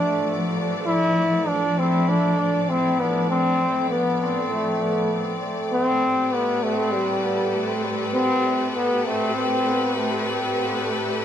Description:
ambient; 99 BPM; 4/4; swing 56% on 16ths; A minor; A4 = 436 Hz
clear trombone; melody; 0.0-10.2 s; G3 to E4; -21 LUFS; equal; dub echo
rich symphonic string section; sustained chords; 0.0-11.2 s; A2 to D5; -25 LUFS; left 1 dB
moderate spring reverb, RT60 1.3 s; echo-heavy mix, vinyl crackle; -20 LUFS; side -9 dB against mid
0.0-11.2 A section
0.0 Dm/A; 5.7 Am11
0.27 | 0.87 1.48 2.08 2.69 | 3.30 3.90 4.51 5.12 | 5.72 6.33 6.93 7.54 | 8.15 8.75 9.36 9.96 | 10.57 11.18

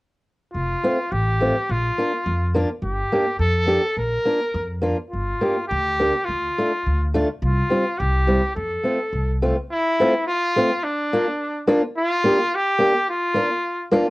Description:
alpine folk, alpine dance band; 105 BPM; 2/4; rubato; F major; A4 = 441 Hz
bright trumpet; melody; 0.5-13.9 s; D4 to Bb4; -22 LUFS; equal
upright bass; bass; 0.5-9.5 s; F1 to F2; -23 LUFS; equal
fingerpicked steel-string acoustic guitar; accompaniment; 0.8-14.1 s; G3 to G4; -19 LUFS; equal; cassette tape
light reverb; home recording on cassette; -19 LUFS; side -21 dB against mid
0.5-9.7 A section; 9.7-14.1 A section
0.5 Fadd9; 1.7 Bb; 2.8 Gm; 4.0 Bb; 5.1 Gm; 6.3 Dm; 7.4 Csus4; 8.0 C; 8.6 F; 10.9 Bb; 12.0 Gm; 13.1 Bb
| 0.55 1.13 | 1.70 2.27 | 2.84 3.40 | 3.97 4.55 | 5.13 5.72 | 6.30 6.87 | 7.43 7.99 | 8.56 9.13 | 9.71 10.28 | 10.85 11.41 | 11.97 12.53 | 13.09 13.65

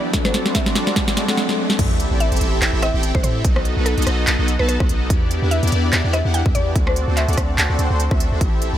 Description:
future bass; 145 BPM; 4/4; swing 56% on 16ths, half-time; A dorian; A4 = 436 Hz
mallet-like synth pluck; melody; 0.0-7.6 s; A4 to G5; -28 LUFS; equal; chorus, sidechain pumping, ping-pong delay
mellow tine electric piano; accompaniment; 0.0-1.8 s; E3 to B4; -29 LUFS; left 1 dB; medium stereo tremolo, sidechain pumping, ping-pong delay
ethereal airy pad; sustained chords; 0.0-1.4 s; G4 to B5; -37 LUFS; left 1 dB
soft supersaw; riff; 0.0-8.8 s; B3 to A5; -23 LUFS; equal; phaser, sidechain pumping
long sustained 808-style bass; bass; 0.0-8.8 s; A1 to A2; -20 LUFS; equal; sidechain pumping, high-pass filter
riser and sub drop; sound effects; 0.0-3.4 s; -27 LUFS; equal
electronic kick drum; drums; 0.1-8.5 s; -20 LUFS; equal; overdrive
trap drum kit; drums; 0.1-8.7 s; crash cymbal, handclaps, hi-hat, rim click, snare drum; -22 LUFS; equal; overdrive
digital ambience; -16 LUFS; side -11 dB against mid
0.0-1.8 A section; 1.8-8.8 B section
build-up 0.0-1.8; drum fill 0.0-1.4, 1.4-1.8; riser 0.0-1.8; drop 1.8-8.8; impact 1.8-3.4
0.1 D7; 1.8 Am7; 3.4 B7; 5.1 Em7; 6.8 D7
| 0.14 0.55 0.96 1.38 | 1.79 2.20 2.62 3.03 | 3.44 3.86 4.27 4.69 | 5.10 5.51 5.93 6.34 | 6.75 7.17 7.58 8.00 | 8.41

